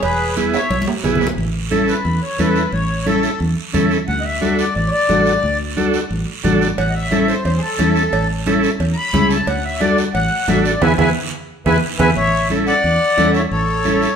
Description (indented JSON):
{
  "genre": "latin, cumbia",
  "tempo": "178 BPM",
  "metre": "4/4",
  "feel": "straight",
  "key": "A major",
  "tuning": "A4 = 440 Hz",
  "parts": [
    { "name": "accordion", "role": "melody", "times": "0.0-14.2 s", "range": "G#4 to B5", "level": "-19 LUFS", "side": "left 2 dB", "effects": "none" },
    { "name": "fingered electric bass", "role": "bass", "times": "0.0-14.1 s", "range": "E1 to E2", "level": "-21 LUFS", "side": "equal", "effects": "none" },
    { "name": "congas", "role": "percussion", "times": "0.0-14.0 s", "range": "none", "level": "-22 LUFS", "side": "left 3 dB", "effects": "none" },
    { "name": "cowbell and timbales", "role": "percussion", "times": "0.0-1.3, 6.8-12.1 s", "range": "none", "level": "-27 LUFS", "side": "right 7 dB", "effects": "none" },
    { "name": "guiro", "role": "percussion", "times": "0.0-14.2 s", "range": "none", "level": "-31 LUFS", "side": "right 6 dB", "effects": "none" },
    { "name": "combo organ", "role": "accompaniment", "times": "0.4-14.1 s", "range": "B3 to A4", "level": "-20 LUFS", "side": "right 3 dB", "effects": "none" }
  ],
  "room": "wet large studio reverb, RT60 1.2 s",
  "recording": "band playing live in one room",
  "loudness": "-14 LUFS",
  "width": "side -7 dB against mid",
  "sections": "0.0-1.4 A section; 1.4-12.2 B section; 12.2-14.2 C section",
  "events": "drum fill 0.5-1.4, 11.5-12.2; accordion solo 1.4-12.2; band accent 10.8-12.2",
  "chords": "0.0 E; 1.4 A; 4.1 D; 6.8 A; 9.5 D; 10.8 E; 12.2 A"
}